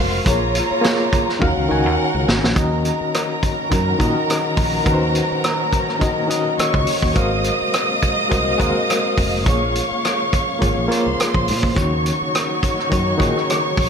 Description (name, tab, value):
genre	lush 1970s-style soul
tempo	104 BPM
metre	4/4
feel	swing 54% on 16ths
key	Eb dorian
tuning	A4 = 440 Hz
part	warm studio violin section	second line	0.0-13.9 s	Db4 to Eb6	-22 LUFS	right 1 dB	none
part	barky reed electric piano	accompaniment	0.0-13.9 s	Eb3 to Ab5	-22 LUFS	left 2 dB	overdrive, medium tremolo
part	fingered electric bass	bass	0.0-13.9 s	F1 to Bb2	-23 LUFS	equal	none
part	vintage drum kit	drums	0.3-13.9 s	hi-hat, kick drum, rim click, snare drum	-21 LUFS	equal	none
part	warm studio string section	sustained chords	2.6-13.9 s	C3 to F5	-28 LUFS	left 1 dB	none
room	light reverb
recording	none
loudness	-16 LUFS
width	side -6 dB against mid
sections	0.0-2.6 A section; 2.6-13.9 B section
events	drum fill 1.4-2.6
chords	0.3 Bbm7; 1.4 Ebm9; 2.6 Ebm7; 7.2 Ab13; 9.5 Bbm7; 11.8 Ebm7